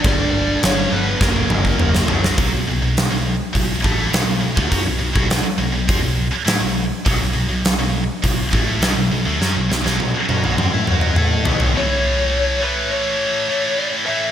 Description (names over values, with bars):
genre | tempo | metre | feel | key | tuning
hard rock | 103 BPM | 4/4 | straight | B minor | A4 = 440 Hz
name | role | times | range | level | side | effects
lead guitar through a small cranked amp | melody | 0.0-2.1, 11.8-14.3 s | A#4 to E5 | -22 LUFS | left 2 dB | overdrive
heavy high-gain guitar | riff | 0.0-14.3 s | F#2 to A4 | -20 LUFS | equal | distortion
overdriven picked electric bass | bass | 0.0-11.7 s | F#1 to A2 | -22 LUFS | equal | none
huge arena drum kit | drums | 0.0-11.7 s | crash cymbal, hi-hat, kick drum, snare drum, toms | -19 LUFS | equal | none
smooth overdriven lead guitar | second line | 0.1-2.1 s | A#3 to D4 | -26 LUFS | right 3 dB | none
room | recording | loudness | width
light reverb, small room ambience | none | -16 LUFS | side -10 dB against mid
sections
0.0-2.4 A section; 2.4-11.7 B section; 11.7-14.3 A section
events
drum fill 1.2-2.4, 9.4-11.7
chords
0.0 G5; 1.2 F#; 2.4 B5; 11.7 A